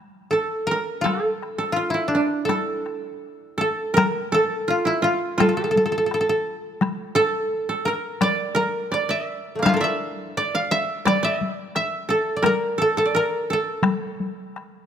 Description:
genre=japanese traditional, Japanese chamber music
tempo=80-88 BPM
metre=2/4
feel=rubato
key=A miyako bushi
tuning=A4 = 440 Hz
part: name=koto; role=melody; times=0.3-14.9 s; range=A3 to F5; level=-23 LUFS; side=equal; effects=none
part: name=koto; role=second line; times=0.3-14.9 s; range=D4 to F5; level=-25 LUFS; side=right 3 dB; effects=none
part: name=taiko ensemble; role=percussion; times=1.1-14.7 s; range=none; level=-24 LUFS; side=left 3 dB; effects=none
room=light reverb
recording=close, detailed microphones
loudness=-20 LUFS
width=side -8 dB against mid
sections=0.0-4.0 A section; 4.0-14.9 B section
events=none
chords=none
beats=0.33 | 1.06 1.78 | 2.50 3.22 | 3.97 4.69 | 5.39 6.09 | 6.80 7.50 | 8.20 8.92 | 9.66 10.38 | 11.08 11.76 | 12.46 13.15 | 13.85 14.57

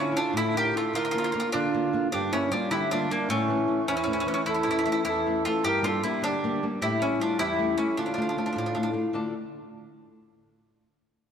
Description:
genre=italian folk, Italian serenade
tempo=102 BPM (dotted quarters)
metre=6/8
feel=straight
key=D harmonic minor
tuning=A4 = 440 Hz
part: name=bowl-back mandolin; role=melody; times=0.0-8.9 s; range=A3 to G4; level=-27 LUFS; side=equal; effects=none
part: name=mellow accordion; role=second line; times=0.0-8.9 s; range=C#4 to Bb4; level=-30 LUFS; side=right 5 dB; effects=none
part: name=nylon-string guitar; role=accompaniment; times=0.0-9.3 s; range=E2 to A5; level=-29 LUFS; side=left 3 dB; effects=none
room=wet concert hall reverb, RT60 2.3 s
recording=none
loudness=-24 LUFS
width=side -7 dB against mid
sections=0.0-9.1 A section; 9.1-10.3 B section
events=none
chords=0.0 Dmadd9; 0.9 Bb/D; 2.1 Gm; 3.3 A; 5.6 Gm; 6.8 A7; 8.0 Dm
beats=0.35 | 0.94 1.53 | 2.12 2.70 | 3.28 3.87 | 4.47 5.06 | 5.65 6.23 | 6.81 7.39 | 7.97 8.56 | 9.15

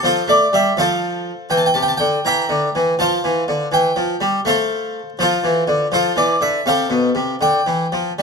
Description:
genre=classical, baroque-style suite movement for harpsichord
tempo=81 BPM (dotted quarters)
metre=12/8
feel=rubato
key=unclear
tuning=A4 = 442 Hz
part: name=harpsichord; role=solo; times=0.0-8.2 s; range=B2 to Bb5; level=-15 LUFS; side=equal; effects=none
room=moderate large studio reverb, RT60 1.2 s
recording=close, detailed microphones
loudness=-15 LUFS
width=side -5 dB against mid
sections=0.0-8.2 A section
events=none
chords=0.0 F; 1.5 C7; 3.0 F; 7.4 Dmadd11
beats=| 0.04 0.78 1.51 2.25 | 2.99 3.73 4.46 5.20 | 5.93 6.67 7.42 8.18

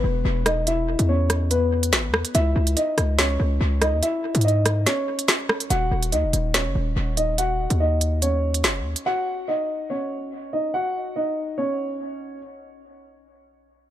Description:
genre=hip hop, drill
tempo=143 BPM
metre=4/4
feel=half-time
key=Eb phrygian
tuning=A4 = 440 Hz
part: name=dark concert grand piano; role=melody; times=0.0-12.4 s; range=B3 to Gb5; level=-25 LUFS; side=equal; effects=low-pass filter, dub echo
part: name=hard-hitting 808-style bass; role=bass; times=0.0-9.0 s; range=Eb1 to Ab2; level=-22 LUFS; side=equal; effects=none
part: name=drill drum kit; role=drums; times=0.5-9.1 s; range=hi-hat, rim click, snare drum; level=-24 LUFS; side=right 1 dB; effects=dub echo
room=light reverb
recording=echo-heavy mix, faint mains hum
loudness=-20 LUFS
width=side -12 dB against mid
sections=0.0-5.7 A section; 5.7-12.4 B section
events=kick muted 4.9-5.7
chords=0.0 E5; 2.3 Dbm; 5.7 Ebm7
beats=0.25 | 0.67 1.09 1.51 1.93 | 2.35 2.77 3.19 3.61 | 4.03 4.45 4.87 5.28 | 5.70 6.12 6.54 6.96 | 7.38 7.80 8.22 8.64 | 9.06 9.48 9.90 10.32 | 10.74 11.16 11.58 12.00

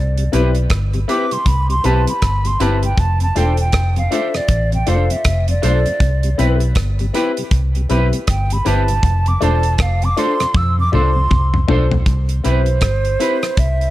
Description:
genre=roots reggae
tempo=79 BPM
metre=4/4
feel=swing 61% on 16ths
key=C major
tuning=A4 = 440 Hz
part: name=mellow hollow silver concert flute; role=melody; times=0.0-13.9 s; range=C5 to E6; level=-21 LUFS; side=right 2 dB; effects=tape echo
part: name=vintage muted fingered electric bass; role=bass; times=0.0-13.9 s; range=E1 to F2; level=-16 LUFS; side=equal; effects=none
part: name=mellow tonewheel organ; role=accompaniment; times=0.2-12.0 s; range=F2 to F4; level=-27 LUFS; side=left 2 dB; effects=chorus vibrato, slow rotary speaker
part: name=damped 70s drum kit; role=drums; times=0.2-13.9 s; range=hi-hat, kick drum, rim click, toms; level=-19 LUFS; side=equal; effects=none
part: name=semi-hollow electric guitar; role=accompaniment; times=0.3-13.4 s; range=D4 to C5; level=-27 LUFS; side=right 4 dB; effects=lush chorus, tape echo
part: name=dark grand piano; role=stabs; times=0.3-13.4 s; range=C4 to C5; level=-24 LUFS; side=left 6 dB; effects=none
room=small room ambience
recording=none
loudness=-14 LUFS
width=side -15 dB against mid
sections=0.0-12.1 A section; 12.1-13.9 B section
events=flute solo 0.0-12.1; drum fill 10.5-12.1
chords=0.0 Cmaj7; 3.0 F6; 6.0 Cmaj7; 9.0 F6; 12.1 Cmaj7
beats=0.70 1.46 2.22 | 2.98 3.73 4.49 5.25 | 6.00 6.76 7.52 8.28 | 9.03 9.79 10.55 11.30 | 12.06 12.82 13.58

